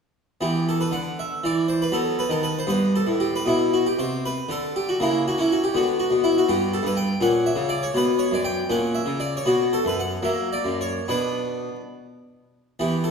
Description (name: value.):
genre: classical, baroque-style suite movement for harpsichord.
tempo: 69-82 BPM (dotted quarters).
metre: 6/8.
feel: rubato.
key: E minor, B minor from 6.5 s.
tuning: A4 = 441 Hz.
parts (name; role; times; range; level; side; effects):
harpsichord; solo; 0.4-13.1 s; F#2 to G5; -20 LUFS; equal; none.
room: wet recital hall reverb, RT60 1.5 s.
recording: heard from further back in the room.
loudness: -20 LUFS.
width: side -6 dB against mid.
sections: 0.4-12.8 A section.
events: none.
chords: 0.4 E5; 1.9 B/F#; 2.7 Gadd9; 3.5 Bm; 5.0 C#m6; 5.7 Bm/D; 6.5 G; 7.2 A#dim; 7.9 B5; 8.7 A#dim; 9.5 B5; 10.2 F#; 11.1 Bm.